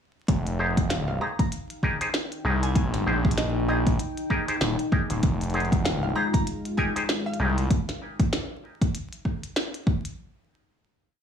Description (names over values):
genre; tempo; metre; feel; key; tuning
glitch hop; 97 BPM; 4/4; swing 59% on 16ths; F minor; A4 = 440 Hz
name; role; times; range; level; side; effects
gritty driven synth bass; bass; 0.3-7.7 s; Eb1 to C2; -26 LUFS; equal; tube saturation
electronic kick drum; drums; 0.3-10.0 s; none; -24 LUFS; equal; overdrive
glitchy drum kit; drums; 0.3-10.2 s; hi-hat, rim click, snare drum; -31 LUFS; equal; none
deep dark ambient pad; texture; 2.1-7.7 s; Eb4 to G5; -34 LUFS; left 1 dB; chorus, built-in reverb, sidechain pumping
auto-wah clav; stabs; 0.6-7.6 s; Eb4 to C5; -29 LUFS; left 1 dB; vintage 12-bit sampler grit, sidechain pumping, digital delay
woody wave-folded pluck; melody; 0.9-7.4 s; Eb5 to Bb5; -36 LUFS; right 1 dB; lush chorus, digital delay
dark analog pad; sustained chords; 5.7-7.7 s; Ab3 to F4; -32 LUFS; left 2 dB; chorus, sidechain pumping
room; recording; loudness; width
light reverb; vinyl crackle, studio reverb; -23 LUFS; side -8 dB against mid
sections
0.3-10.2 drop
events
drop 0.3-10.2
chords
0.3 Fm9